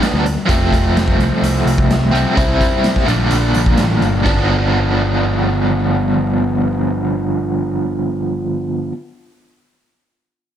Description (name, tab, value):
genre	psychedelic rock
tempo	127 BPM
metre	4/4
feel	straight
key	G mixolydian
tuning	A4 = 440 Hz
part	biting overdriven guitar	riff	0.0-8.9 s	F2 to E4	-16 LUFS	equal	tremolo
part	raw garage drum kit	drums	0.0-4.4 s	crash cymbal, hi-hat, kick drum, snare drum	-18 LUFS	equal	none
part	picked electric bass	bass	0.1-8.9 s	F1 to D2	-19 LUFS	equal	none
part	congas	percussion	0.4-0.5 s	none	barely audible	none	none
room	light reverb, small room ambience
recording	none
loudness	-13 LUFS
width	side -10 dB against mid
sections	0.0-4.3 A section; 4.3-8.0 B section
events	none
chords	0.5 F; 2.4 C; 3.1 Bb; 4.3 G7